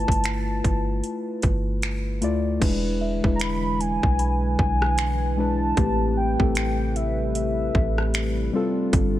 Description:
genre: contemporary R&B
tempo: 76 BPM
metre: 4/4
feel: swing 58% on 16ths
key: unclear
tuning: A4 = 440 Hz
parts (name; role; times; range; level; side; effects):
- warm velvety synth lead; melody; 0.0-8.5 s; E5 to B5; -28 LUFS; equal; chorus, digital delay
- muted felt-like synth keys; accompaniment; 0.0-9.2 s; G3 to D5; -26 LUFS; left 3 dB; chorus
- soft 808-style bass; bass; 0.0-9.2 s; E1 to D2; -26 LUFS; equal; none
- trap drum kit; drums; 0.1-9.1 s; crash cymbal, finger snaps, hi-hat, kick drum, rim click; -25 LUFS; equal; overdrive, vintage 12-bit sampler grit
- hollow soft pad; sustained chords; 2.6-9.2 s; C3 to B4; -32 LUFS; right 1 dB; chorus, sidechain pumping
- small celesta; texture; 3.0-5.3 s; E5 to B5; -38 LUFS; right 1 dB; digital delay
room: digital ambience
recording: none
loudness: -21 LUFS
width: side -14 dB against mid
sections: 0.0-2.6 A section; 2.6-9.2 B section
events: none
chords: 0.0 G13; 2.6 E7; 5.8 Am9; 8.5 G9sus4

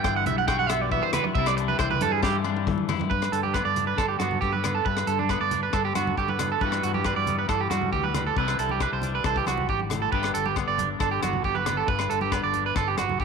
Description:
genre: highlife guitar band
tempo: 137 BPM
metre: 4/4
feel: straight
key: G major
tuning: A4 = 438 Hz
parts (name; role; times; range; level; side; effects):
- semi-hollow electric guitar; accompaniment; 0.0-13.2 s; G2 to G4; -31 LUFS; left 16 dB; wide subtle chorus
- electric guitar at the edge of break-up; arpeggios; 0.0-13.2 s; D4 to G5; -26 LUFS; right 11 dB; spring reverb, tape echo
- fingered electric bass; bass; 0.0-13.2 s; G1 to G2; -31 LUFS; left 2 dB; none
- tight funk drum kit; drums; 0.0-13.2 s; hi-hat, kick drum, rim click, snare drum, toms; -31 LUFS; left 4 dB; none
- agogo bells; percussion; 0.0-13.1 s; none; -36 LUFS; left 14 dB; none
- congas; percussion; 0.3-13.2 s; none; -35 LUFS; right 8 dB; none
room: light reverb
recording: 1960s-style stereo with parts hard left and right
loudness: -23 LUFS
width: side -5 dB against mid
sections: 0.0-3.1 A section; 3.1-13.2 B section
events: clean electric guitar solo 0.0-3.1; drum fill 2.2-3.1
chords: 0.0 Emadd9/G; 1.4 Cadd9; 3.1 G; 6.6 Emadd9/G; 8.4 Cadd9; 10.1 G

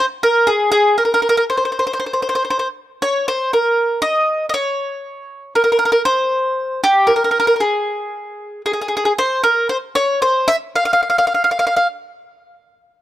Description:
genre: italian folk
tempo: 117 BPM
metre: 3/4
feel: straight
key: unclear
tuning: A4 = 440 Hz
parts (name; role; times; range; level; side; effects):
- mandolin; solo; 0.0-11.9 s; G4 to F5; -14 LUFS; equal; none
room: studio reverb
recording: dry, close 1970s-style studio recording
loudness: -14 LUFS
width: side -13 dB against mid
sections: 0.0-9.2 A section; 9.2-12.6 B section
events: slowing down 9.2-12.6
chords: none

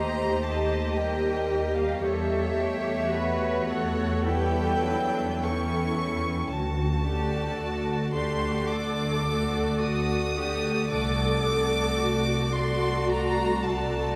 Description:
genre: classical, slow romantic movement for string orchestra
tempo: 55 BPM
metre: 4/4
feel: rubato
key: unclear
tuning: A4 = 441 Hz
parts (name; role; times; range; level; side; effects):
- warm chamber violin section; melody; 0.0-14.2 s; E5 to Eb6; -34 LUFS; equal; none
- warm chamber violin section; second line; 0.0-14.2 s; A4 to Eb5; -34 LUFS; equal; none
- rich chamber viola section; accompaniment; 0.0-14.2 s; E3 to G4; -33 LUFS; equal; none
- dark chamber double bass section; bass; 0.0-14.1 s; C2 to E2; -32 LUFS; equal; none
- warm chamber cello section; bass; 0.0-14.2 s; D4 to B4; -36 LUFS; equal; none
room: wet cathedral reverb, RT60 6.0 s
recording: in a vast, echoing space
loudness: -26 LUFS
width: mono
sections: 0.0-14.2 A section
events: none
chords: 0.0 Cm/Eb; 2.0 A7/E; 6.5 D; 10.9 D7/C

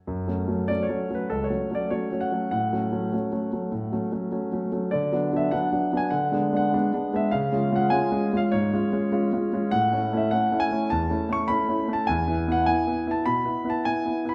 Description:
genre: classical-period piano sonatina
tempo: 100 BPM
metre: 4/4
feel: rubato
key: F# minor, A major from 9.7 s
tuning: A4 = 439 Hz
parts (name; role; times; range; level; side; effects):
- warm concert grand piano; solo; 0.1-14.3 s; C#2 to C#6; -25 LUFS; equal; none
room: moderate recital hall reverb, RT60 1.6 s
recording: lossy compression artefacts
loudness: -25 LUFS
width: mono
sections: 0.1-14.3 A section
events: none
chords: 0.1 F#m; 2.5 F#m/A; 4.9 Bm/D; 7.3 C#; 9.7 A; 12.1 E5

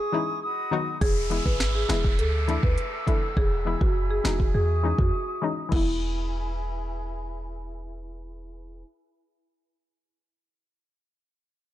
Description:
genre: dancehall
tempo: 102 BPM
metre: 4/4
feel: straight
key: E major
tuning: A4 = 440 Hz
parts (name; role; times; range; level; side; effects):
- marimba with medium mallets; melody; 0.0-7.4 s; E4 to B4; -30 LUFS; equal; low-pass filter, ping-pong delay
- small flute group; sustained chords; 0.0-8.8 s; E4 to E6; -34 LUFS; equal; sidechain pumping, low-pass filter
- hollow square pluck; accompaniment; 0.1-9.6 s; D#3 to F#4; -30 LUFS; left 6 dB; chorus, low-pass filter
- clean 808-style bass; bass; 1.0-8.8 s; E1 to E2; -28 LUFS; equal; none
- afro-pop drum kit; drums; 1.0-5.9 s; crash cymbal, hi-hat, kick drum, rim click, snare drum; -26 LUFS; equal; none
- downlifter; sound effects; 1.0-5.7 s; none; -36 LUFS; right 1 dB; none
room: little or no reverb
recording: dark, warm production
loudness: -23 LUFS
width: side -14 dB against mid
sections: 0.0-1.0 A section; 1.0-5.7 B section; 5.7-8.1 C section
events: break 0.0-1.0, 5.1-5.7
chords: 0.4 B; 1.0 E; 2.2 Dsus2; 3.4 E; 4.5 C#madd9/E; 5.7 E

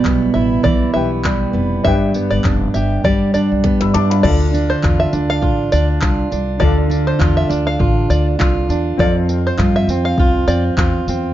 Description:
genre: acoustic pop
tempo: 101 BPM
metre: 4/4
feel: swing 55% on 16ths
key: unclear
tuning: A4 = 441 Hz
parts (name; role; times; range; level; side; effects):
- fingerpicked steel-string acoustic guitar; accompaniment; 0.0-11.3 s; F2 to G4; -17 LUFS; right 2 dB; none
- warm upright piano; accompaniment; 0.0-11.3 s; C4 to E6; -26 LUFS; left 8 dB; none
- open-back banjo; arpeggios; 0.0-10.6 s; C5 to F5; -21 LUFS; right 1 dB; none
- upright bass; bass; 0.0-11.3 s; F1 to G2; -18 LUFS; left 1 dB; none
- glitchy drum kit; drums; 0.1-11.2 s; crash cymbal, handclaps, kick drum, snare drum, tambourine; -19 LUFS; left 1 dB; none
room: light reverb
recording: dark, warm production, nothing above 7.5 kHz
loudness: -13 LUFS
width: side -13 dB against mid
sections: 0.0-4.2 A section; 4.2-11.3 B section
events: drum fill 3.6-4.2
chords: 0.0 Em; 4.2 Dm; 9.0 F

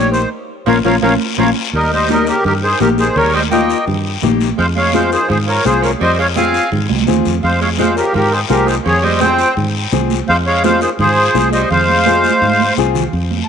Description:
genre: latin, cumbia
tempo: 168 BPM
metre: 4/4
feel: straight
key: unclear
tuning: A4 = 440 Hz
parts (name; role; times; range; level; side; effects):
- accordion; melody; 0.0-13.5 s; G4 to A5; -15 LUFS; equal; light tremolo tuning
- bright tenor saxophone; second line; 0.0-12.7 s; Db3 to C4; -23 LUFS; right 9 dB; none
- nylon-string guitar; accompaniment; 0.0-13.0 s; Bb3 to Ab4; -19 LUFS; left 13 dB; none
- fingered electric bass; bass; 0.0-13.4 s; Bb1 to Ab2; -19 LUFS; equal; none
- guiro; percussion; 0.1-13.5 s; none; -26 LUFS; left 12 dB; none
- congas; percussion; 0.7-13.5 s; none; -21 LUFS; right 12 dB; none
room: moderate plate reverb, RT60 2.7 s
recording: 1960s-style stereo with parts hard left and right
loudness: -11 LUFS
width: side -7 dB against mid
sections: 0.0-1.7 A section; 1.7-13.1 B section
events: band accent 0.3-1.7; drum fill 6.9-7.4, 12.2-13.1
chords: 0.3 Bbm; 1.7 Eb; 4.6 Fm

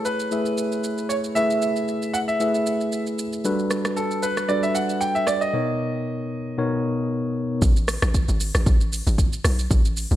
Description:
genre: amapiano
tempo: 115 BPM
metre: 4/4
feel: swing 55% on 16ths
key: unclear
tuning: A4 = 440 Hz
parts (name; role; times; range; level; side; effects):
- clear grand piano; melody; 0.0-7.1 s; A4 to G5; -25 LUFS; right 1 dB; digital delay
- mellow tine electric piano; accompaniment; 0.0-7.6 s; B2 to E5; -24 LUFS; left 1 dB; none
- deep house drum kit; drums; 0.1-10.2 s; hi-hat, kick drum, rim click, shaker; -24 LUFS; equal; none
- hollow log drum bass; bass; 7.6-10.2 s; G#1 to B1; -22 LUFS; equal; none
room: light reverb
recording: none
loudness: -20 LUFS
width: side -13 dB against mid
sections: 0.0-7.6 A section; 7.6-10.2 B section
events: break 5.5-7.6; drop 7.6-10.2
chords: 0.0 Amaj9; 3.4 Gmaj9; 5.5 Bmaj9; 7.6 N.C.

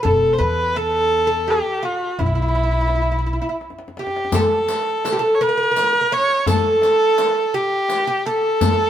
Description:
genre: Persian modal ensemble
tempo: 56 BPM (dotted quarters)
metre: 6/8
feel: straight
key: E dastgah shur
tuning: A4 = 440 Hz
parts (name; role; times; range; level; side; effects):
- clear kamancheh; melody; 0.0-8.9 s; E4 to C#5; -19 LUFS; right 1 dB; tape echo
- oud; second line; 0.0-8.9 s; E4 to C#5; -22 LUFS; left 1 dB; none
- upright bass; bass; 0.0-3.4 s; E1 to E2; -23 LUFS; equal; none
- tombak; percussion; 0.1-8.8 s; none; -24 LUFS; left 2 dB; none
- riq; percussion; 4.3-8.8 s; none; -26 LUFS; left 5 dB; none
room: light reverb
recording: band playing live in one room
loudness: -16 LUFS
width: side -10 dB against mid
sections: 0.0-4.3 A section; 4.3-8.9 B section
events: drum fill 3.6-4.3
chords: none

